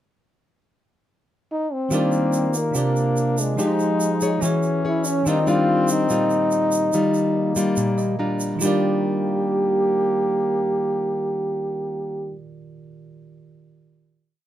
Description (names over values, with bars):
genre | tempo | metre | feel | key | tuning
bossa nova | 143 BPM | 4/4 | straight | Eb major | A4 = 441 Hz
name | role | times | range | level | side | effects
mellow trombone | melody | 1.5-12.3 s | Ab3 to G4 | -22 LUFS | equal | none
trumpet with bucket mute | second line | 1.9-12.3 s | Bb3 to Eb4 | -28 LUFS | left 3 dB | none
bell-like tine electric piano | accompaniment | 1.9-14.5 s | C3 to Bb5 | -30 LUFS | right 5 dB | none
nylon-string guitar | accompaniment | 1.9-12.4 s | Bb2 to Db5 | -23 LUFS | left 1 dB | none
egg shaker | percussion | 1.9-8.7 s | none | -31 LUFS | right 4 dB | none
room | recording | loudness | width
light reverb | minimal, uncompressed stereo recording | -19 LUFS | side -12 dB against mid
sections
0.2-1.9 pickup bar; 1.9-8.6 A section; 8.6-12.0 final chord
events
tine electric piano fill 7.8-8.6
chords
0.2 N.C.; 1.9 Ebmaj9; 2.7 C9sus4; 3.6 Fm9; 4.4 E69; 5.3 Ebmaj9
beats
| 0.23 0.65 1.07 1.49 | 1.91 2.33 2.75 3.16 | 3.58 4.00 4.42 4.84 | 5.25 5.67 6.09 6.51 | 6.93 7.35 7.77 8.19 | 8.61 9.03 9.45 9.87 | 10.29 10.71 11.13 11.55